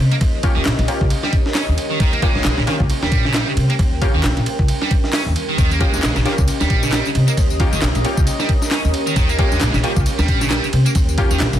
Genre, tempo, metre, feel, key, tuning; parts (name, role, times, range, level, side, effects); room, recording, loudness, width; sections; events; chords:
breakbeat, breaks; 134 BPM; 4/4; swing 58% on 16ths; Eb mixolydian; A4 = 442 Hz
deep dark ambient pad; sustained chords; 0.0-11.6 s; Db4 to G5; -26 LUFS; equal; chorus, built-in reverb, sidechain pumping
upright bass; bass; 0.0-11.6 s; Bb1 to C3; -19 LUFS; equal
distorted electric guitar; riff; 0.1-11.4 s; Db3 to Db4; -23 LUFS; right 2 dB; distortion, tape echo
breakbeat sampler-style drum kit; drums; 0.1-11.6 s; hi-hat, kick drum, ride cymbal, snare drum; -18 LUFS; equal; studio reverb
orchestra-hit-like synth stab; stabs; 0.4-11.6 s; Bb3 to G4; -25 LUFS; left 2 dB; built-in reverb, tape echo
electronic handclaps and tambourine; drums; 0.7-11.6 s; -28 LUFS; left 2 dB; overdrive, studio reverb
little or no reverb; dense, heavily limited modern master, vinyl crackle; -15 LUFS; side -11 dB against mid
0.0-11.6 A section
0.0 Eb7